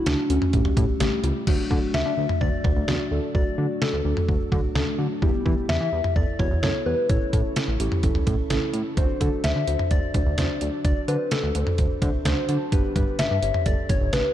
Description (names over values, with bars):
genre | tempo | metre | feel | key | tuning
synth-pop | 128 BPM | 4/4 | straight | D major | A4 = 438 Hz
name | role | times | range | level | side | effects
soft struck synth lead | melody | 0.0-14.3 s | C#4 to E5 | -28 LUFS | left 3 dB | chorus, slapback echo, shimmer reverb
muted felt-like synth keys | accompaniment | 0.0-14.3 s | A3 to A5 | -28 LUFS | left 1 dB | chorus, shimmer reverb
chorused synth bass | bass | 0.1-14.2 s | G1 to E3 | -26 LUFS | equal | none
detuned 8-bit digital drum machine | drums | 0.1-14.2 s | cowbell, crash cymbal, hi-hat, kick drum, snare drum, toms | -24 LUFS | equal | none
room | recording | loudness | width
light reverb | dark, warm production | -21 LUFS | side -12 dB against mid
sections
0.0-1.5 A section; 1.5-14.3 B section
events
synth keys fill 11.8-12.7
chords
0.0 D; 0.5 A7; 1.5 D; 5.2 Em; 7.1 A; 9.0 D7; 12.7 G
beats
0.07 0.53 1.00 | 1.47 1.94 2.41 2.88 | 3.35 3.82 4.28 4.75 | 5.22 5.69 6.16 6.63 | 7.10 7.57 8.03 8.50 | 8.97 9.44 9.91 10.38 | 10.85 11.32 11.78 12.25 | 12.72 13.19 13.66 14.13